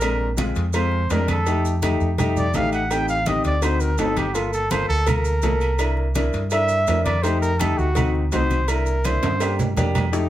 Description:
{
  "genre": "Afro-Cuban jazz",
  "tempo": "166 BPM",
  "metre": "4/4",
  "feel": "straight",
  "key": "unclear",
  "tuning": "A4 = 439 Hz",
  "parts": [
    { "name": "breathy trumpet", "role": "melody", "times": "0.0-9.6 s", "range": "F4 to G5", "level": "-24 LUFS", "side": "right 1 dB", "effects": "none" },
    { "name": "warm baby grand piano", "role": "accompaniment", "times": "0.0-10.3 s", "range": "Ab3 to Bb4", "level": "-26 LUFS", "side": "left 3 dB", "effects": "none" },
    { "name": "fingered electric bass", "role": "bass", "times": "0.0-10.3 s", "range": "G1 to G2", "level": "-23 LUFS", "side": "equal", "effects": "none" },
    { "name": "agogo bells and timbales", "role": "percussion", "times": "0.0-10.1 s", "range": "none", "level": "-29 LUFS", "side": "right 5 dB", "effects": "none" },
    { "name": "congas", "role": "percussion", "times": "0.0-10.3 s", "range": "none", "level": "-29 LUFS", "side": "right 1 dB", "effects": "none" },
    { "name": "cowbell and bongos", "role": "percussion", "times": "0.0-10.3 s", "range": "none", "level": "-33 LUFS", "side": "equal", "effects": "none" },
    { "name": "maracas", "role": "percussion", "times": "0.0-10.3 s", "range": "none", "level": "-38 LUFS", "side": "right 6 dB", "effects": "none" }
  ],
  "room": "moderate studio reverb, RT60 0.5 s",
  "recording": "heard from further back in the room",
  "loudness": "-18 LUFS",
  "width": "side -13 dB against mid",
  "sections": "0.0-10.1 A section",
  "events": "trumpet solo 0.0-10.1; drum fill 9.2-10.1",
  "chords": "0.0 Bb7; 1.5 F7; 2.9 Am7b5; 3.6 D7b9; 4.4 Gm7; 5.8 C7; 7.2 F7; 8.0 D7b9; 8.7 C7"
}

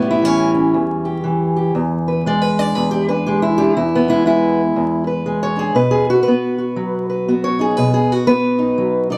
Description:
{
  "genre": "acoustic country blues, solo or duo",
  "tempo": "119 BPM",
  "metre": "4/4",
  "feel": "swing 61% on 8ths",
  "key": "E mixolydian",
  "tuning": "A4 = 441 Hz",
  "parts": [
    { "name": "fingerpicked steel-string acoustic guitar", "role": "solo", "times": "0.0-9.2 s", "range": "E2 to D5", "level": "-17 LUFS", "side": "equal", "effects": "none" }
  ],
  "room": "moderate studio reverb, RT60 0.6 s",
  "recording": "vinyl crackle",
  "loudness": "-17 LUFS",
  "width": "mono",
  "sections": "0.0-9.2 A section",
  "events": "none",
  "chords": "0.0 A7; 1.7 E7; 5.8 B"
}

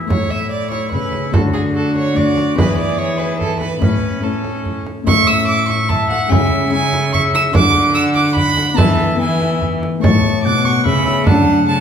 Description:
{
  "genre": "classical, renaissance-style consort dance",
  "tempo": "146 BPM",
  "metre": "3/4",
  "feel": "straight",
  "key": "A major",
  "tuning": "A4 = 438 Hz",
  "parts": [
    { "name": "warm oboe", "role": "melody", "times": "0.0-11.8 s", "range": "C#4 to A5", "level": "-23 LUFS", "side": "left 3 dB", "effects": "none" },
    { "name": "Celtic harp", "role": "accompaniment", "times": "0.0-11.8 s", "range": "A2 to D5", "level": "-20 LUFS", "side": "left 5 dB", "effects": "none" },
    { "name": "rich violin", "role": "second line", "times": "0.1-11.8 s", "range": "G#4 to E6", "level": "-19 LUFS", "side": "right 4 dB", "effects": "none" },
    { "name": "rich cello", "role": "bass", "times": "0.1-11.8 s", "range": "A2 to E3", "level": "-20 LUFS", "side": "right 1 dB", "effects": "none" },
    { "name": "frame drum", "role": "percussion", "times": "0.1-11.5 s", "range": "none", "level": "-19 LUFS", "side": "right 1 dB", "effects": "none" }
  ],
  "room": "wet recital hall reverb, RT60 1.4 s",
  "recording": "recorded in a church or concert hall",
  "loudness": "-13 LUFS",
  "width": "side -8 dB against mid",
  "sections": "0.0-5.1 A section; 5.1-11.8 A section",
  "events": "none",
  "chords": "0.1 A; 1.3 D; 2.6 E; 3.8 A; 6.3 C#m; 7.5 D; 8.8 Esus4; 9.2 E; 10.0 A; 11.3 D"
}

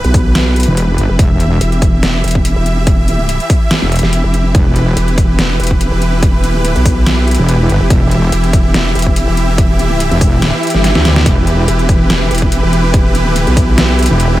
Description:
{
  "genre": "heavy wobble dubstep",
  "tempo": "143 BPM",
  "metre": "4/4",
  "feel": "swing 54% on 16ths, half-time",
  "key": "E minor",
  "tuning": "A4 = 443 Hz",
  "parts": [
    { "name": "supersaw chords", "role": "sustained chords", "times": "0.0-14.4 s", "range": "E3 to E5", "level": "-18 LUFS", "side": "right 1 dB", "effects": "sidechain pumping" },
    { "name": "vowel-sweep wobble bass", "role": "bass", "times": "0.0-14.1 s", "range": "E1 to B1", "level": "-13 LUFS", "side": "equal", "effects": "chorus, overdrive" },
    { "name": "dubstep drum kit", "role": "drums", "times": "0.0-14.3 s", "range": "hi-hat, snare drum", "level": "-16 LUFS", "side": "equal", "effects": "overdrive" },
    { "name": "electronic kick drum", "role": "drums", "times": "0.1-13.7 s", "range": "none", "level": "-12 LUFS", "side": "equal", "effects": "overdrive" },
    { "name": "wobble bass", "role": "bass", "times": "0.7-14.4 s", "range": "E1 to D2", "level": "-11 LUFS", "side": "equal", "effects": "chorus, overdrive" },
    { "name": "swell", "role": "sound effects", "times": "10.6-11.3 s", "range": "none", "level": "-22 LUFS", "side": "left 1 dB", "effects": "none" }
  ],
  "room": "little or no reverb",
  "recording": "none",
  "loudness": "-9 LUFS",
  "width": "side -15 dB against mid",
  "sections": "0.0-14.4 A section",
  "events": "swell 10.6-11.3; drum fill 10.8-11.3",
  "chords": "0.0 Em"
}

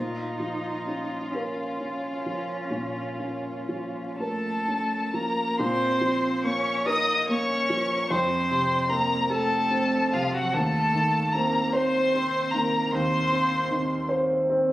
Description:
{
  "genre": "classical, slow romantic movement for piano quartet",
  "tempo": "38-52 BPM (dotted quarters)",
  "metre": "12/8",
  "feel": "rubato",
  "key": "Bb minor",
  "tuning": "A4 = 441 Hz",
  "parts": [
    { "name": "muted violin", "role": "melody", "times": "0.0-14.1 s", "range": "F4 to Eb6", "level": "-28 LUFS", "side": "left 1 dB", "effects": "none" },
    { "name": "muted cello", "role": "second line", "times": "0.0-14.1 s", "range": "F3 to Eb4", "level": "-32 LUFS", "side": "right 2 dB", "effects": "none" },
    { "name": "muted violin", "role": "second line", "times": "0.0-14.1 s", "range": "F4 to Eb5", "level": "-30 LUFS", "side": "equal", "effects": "none" },
    { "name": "dark concert grand piano", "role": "accompaniment", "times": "0.0-14.7 s", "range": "Eb2 to C5", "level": "-28 LUFS", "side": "equal", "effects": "none" }
  ],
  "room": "moderate recital hall reverb, RT60 1.3 s",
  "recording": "recorded on a phone in the room, studio reverb, compression",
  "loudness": "-23 LUFS",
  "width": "side -15 dB against mid",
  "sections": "0.0-5.6 A section; 5.6-14.7 B section",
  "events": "none",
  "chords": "0.0 Bbm; 8.1 F; 10.5 Adim/Eb"
}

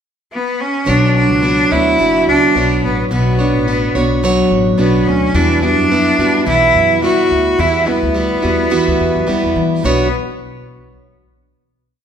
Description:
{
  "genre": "acoustic pop",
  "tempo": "107 BPM",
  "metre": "4/4",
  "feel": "swing 55% on 16ths",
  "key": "B minor",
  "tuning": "A4 = 440 Hz",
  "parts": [
    { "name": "bright cello", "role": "melody", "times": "0.3-10.1 s", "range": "B3 to F#4", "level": "-15 LUFS", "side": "equal", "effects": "none" },
    { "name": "picked plugged-in steel-string acoustic guitar", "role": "accompaniment", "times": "0.9-10.1 s", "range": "E2 to C#5", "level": "-15 LUFS", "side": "right 2 dB", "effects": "none" },
    { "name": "upright bass", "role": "bass", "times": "0.9-10.1 s", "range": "F#1 to E3", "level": "-19 LUFS", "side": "left 1 dB", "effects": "none" }
  ],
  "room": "wet recital hall reverb, RT60 1.7 s",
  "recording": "recorded in a church or concert hall",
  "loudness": "-11 LUFS",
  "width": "side -8 dB against mid",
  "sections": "0.0-0.9 pickup bar; 0.9-9.8 verse; 9.8-12.0 final chord",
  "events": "none",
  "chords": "0.0 N.C.; 0.9 Bmadd9; 5.3 Emadd9; 9.8 Bmadd9"
}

